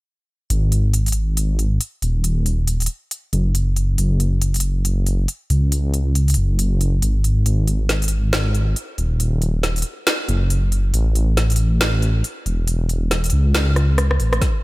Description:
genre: deep dubstep.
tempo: 138 BPM.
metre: 4/4.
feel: swing 59% on 16ths, half-time.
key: unclear.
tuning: A4 = 440 Hz.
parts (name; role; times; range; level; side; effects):
dark detuned saw bass; bass; 0.5-14.4 s; D#1 to C#2; -17 LUFS; equal; none.
deep house drum kit; drums; 0.5-14.5 s; hi-hat, rim click, snare drum; -22 LUFS; equal; small room reverb.
electronic kick drum; drums; 14.4-14.5 s; none; -18 LUFS; equal; small room reverb.
room: digital ambience.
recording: none.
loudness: -17 LUFS.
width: side -20 dB against mid.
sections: 0.5-14.4 A section.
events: drum fill 13.8-14.4, 14.4.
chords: none.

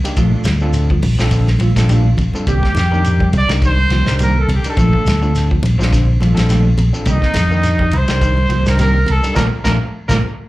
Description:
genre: afrobeat.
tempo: 104 BPM.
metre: 4/4.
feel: swing 56% on 16ths.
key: unclear.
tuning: A4 = 438 Hz.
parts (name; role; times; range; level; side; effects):
overdriven reed electric piano; accompaniment; 0.0-10.2 s; Bb3 to C5; -27 LUFS; left 1 dB; fast tremolo, slapback echo.
fingered electric bass; bass; 0.0-10.2 s; Bb1 to F2; -14 LUFS; equal; none.
shekere; percussion; 0.0-10.2 s; none; -25 LUFS; equal; none.
mellow electric guitar; stabs; 0.1-10.2 s; Eb3 to G4; -24 LUFS; right 6 dB; lush chorus, slapback echo.
warm soul drum kit; drums; 0.1-10.2 s; hi-hat, kick drum, ride cymbal, snare drum; -21 LUFS; equal; none.
electric guitar at the edge of break-up; arpeggios; 0.2-10.2 s; D3 to Bb3; -24 LUFS; left 4 dB; slapback echo.
congas; percussion; 0.5-10.2 s; none; -23 LUFS; equal; slapback echo.
clear trumpet; melody; 2.5-10.1 s; Eb4 to D5; -21 LUFS; equal; slapback echo.
breathy trumpet; second line; 2.5-10.2 s; Eb4 to D5; -25 LUFS; right 3 dB; slapback echo.
room: little or no reverb.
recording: live gig heard through the venue's PA, club reverb.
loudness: -12 LUFS.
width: side -17 dB against mid.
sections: 0.0-10.5 A section.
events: band accent 9.4-10.5.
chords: 0.2 Bbmaj7; 2.5 Cm7; 4.8 Bbmaj7; 7.1 Cm7; 9.4 Bbmaj7.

